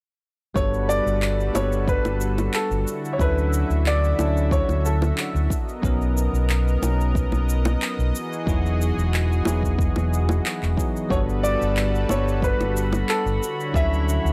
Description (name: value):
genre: sunset chillout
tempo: 91 BPM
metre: 4/4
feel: straight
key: unclear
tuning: A4 = 439 Hz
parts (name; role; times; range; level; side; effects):
- bell-like tine electric piano; accompaniment; 0.5-14.3 s; F#3 to A#4; -32 LUFS; equal; tape echo
- warm concert grand piano; melody; 0.6-5.5, 11.1-14.3 s; A4 to E5; -28 LUFS; equal; analog delay
- lush unison pad; sustained chords; 0.6-14.3 s; D3 to E5; -32 LUFS; equal; chorus
- fingered electric bass; bass; 0.6-14.3 s; E1 to D2; -25 LUFS; equal; none
- electronic kick drum; drums; 0.6-13.9 s; none; -27 LUFS; equal; none
- electronic shaker and handclaps; drums; 0.6-14.3 s; none; -33 LUFS; equal; none
- bongos; percussion; 1.6-13.1 s; none; -30 LUFS; equal; none
- drifting glass-harmonics texture; texture; 12.1-14.3 s; B5; -38 LUFS; equal; chorus, built-in reverb
room: little or no reverb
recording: dry, gritty hardware recording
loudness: -22 LUFS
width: mono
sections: 0.6-14.3 A section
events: none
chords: 0.6 Gmaj9; 2.9 Dmaj9; 5.5 Bmaj9; 8.1 Emaj9; 11.1 Gmaj9; 13.4 Dmaj9